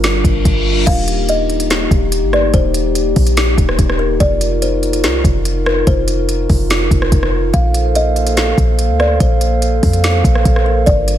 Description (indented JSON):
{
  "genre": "hip hop, atmospheric cloud-rap",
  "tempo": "144 BPM",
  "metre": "4/4",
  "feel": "half-time",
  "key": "Bb major",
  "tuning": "A4 = 440 Hz",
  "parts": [
    { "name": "glass harmonica", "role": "sustained chords", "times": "0.0-11.2 s", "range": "G3 to F5", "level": "-18 LUFS", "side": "equal", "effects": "sidechain pumping" },
    { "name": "clean 808-style bass", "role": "bass", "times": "0.0-11.2 s", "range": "Eb1 to F2", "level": "-16 LUFS", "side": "equal", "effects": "none" },
    { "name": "smooth R&B drum kit", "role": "drums", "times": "0.0-11.2 s", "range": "crash cymbal, hi-hat, kick drum, rim click, snare drum", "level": "-16 LUFS", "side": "equal", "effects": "none" },
    { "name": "reverse cymbal", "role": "sound effects", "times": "0.2-0.9 s", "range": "none", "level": "-23 LUFS", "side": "left 4 dB", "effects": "none" },
    { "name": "kalimba", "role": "melody", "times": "0.9-11.2 s", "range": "Bb4 to F5", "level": "-21 LUFS", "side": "left 1 dB", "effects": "digital delay" }
  ],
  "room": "little or no reverb",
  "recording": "none",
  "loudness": "-12 LUFS",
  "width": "side -11 dB against mid",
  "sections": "0.9-11.2 A section",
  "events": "reverse cymbal 0.2-0.9",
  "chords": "0.0 Gm7; 0.9 Eb; 4.2 F7sus4; 7.5 Bbmaj7sus2",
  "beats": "0.04 0.45 | 0.87 1.29 1.70 2.12 | 2.54 2.95 3.37 3.79 | 4.20 4.62 5.04 5.45 | 5.87 6.29 6.70 7.12 | 7.54 7.95 8.37 8.79 | 9.20 9.62 10.04 10.45 | 10.87"
}